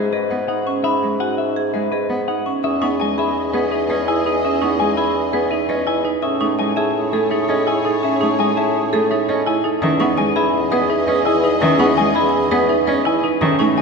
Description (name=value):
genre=classical, minimalist pattern music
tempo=167 BPM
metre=5/4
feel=straight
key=E major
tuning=A4 = 440 Hz
part: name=clean electric guitar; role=melody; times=0.0-13.8 s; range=G#4 to G#5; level=-24 LUFS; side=left 8 dB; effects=none
part: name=warm cello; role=accompaniment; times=0.0-13.8 s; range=D#3 to C#4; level=-24 LUFS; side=left 1 dB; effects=none
part: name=xylophone with rubber mallets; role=arpeggios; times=0.0-13.8 s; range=D#5 to D#6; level=-25 LUFS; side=left 2 dB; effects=none
part: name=warm bassoon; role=bass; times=0.0-13.8 s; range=E2 to A2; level=-24 LUFS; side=equal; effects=none
part: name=marimba with medium hard mallets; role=arpeggios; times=0.1-13.8 s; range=C#4 to B4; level=-21 LUFS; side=right 5 dB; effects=none
part: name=mellow clarinet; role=second line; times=2.6-13.8 s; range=G#4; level=-25 LUFS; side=left 1 dB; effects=none
part: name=warm studio string section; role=sustained chords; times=2.6-13.8 s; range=G#4 to D#5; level=-28 LUFS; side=right 1 dB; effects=none
room=wet cathedral reverb, RT60 5.5 s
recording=recorded in a church or concert hall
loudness=-16 LUFS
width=side -4 dB against mid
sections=0.0-2.6 A section; 2.6-13.8 B section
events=none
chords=0.0 F#9sus4/G#; 2.6 Emaj7; 6.2 Amaj7; 9.8 Emaj7